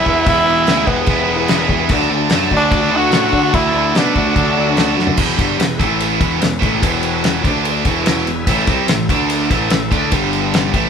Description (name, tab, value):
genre	classic rock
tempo	146 BPM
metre	4/4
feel	straight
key	E mixolydian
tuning	A4 = 440 Hz
part	growling tenor saxophone	melody	0.0-5.0 s	B3 to F#4	-17 LUFS	equal	none
part	nasal lead guitar with a parked wah	second line	0.0-5.0 s	B4 to F#5	-27 LUFS	right 2 dB	none
part	picked acoustic archtop guitar	accompaniment	0.0-5.2 s	E2 to F#4	-25 LUFS	equal	none
part	bright tonewheel organ	sustained chords	0.0-10.7 s	E3 to E5	-29 LUFS	left 1 dB	none
part	crunchy overdriven guitar	riff	0.0-10.9 s	E2 to F#4	-21 LUFS	left 7 dB	none
part	tight distorted guitar	riff	0.0-10.9 s	E2 to G#4	-18 LUFS	right 8 dB	distortion
part	fuzz picked electric bass	bass	0.0-10.9 s	E1 to D3	-22 LUFS	equal	overdrive
part	damped 70s drum kit	drums	0.1-10.8 s	crash cymbal, kick drum, ride cymbal, snare drum, toms	-18 LUFS	left 1 dB	none
room	moderate large studio reverb, RT60 0.9 s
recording	band playing live in one room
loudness	-13 LUFS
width	side -7 dB against mid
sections	0.0-5.2 A section; 5.2-10.9 B section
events	drum fill 5.0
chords	0.0 E; 1.9 D; 5.2 E; 5.8 A5; 6.2 E; 7.4 D5; 7.9 E; 8.5 A5; 9.1 D5; 9.5 A5; 10.1 G5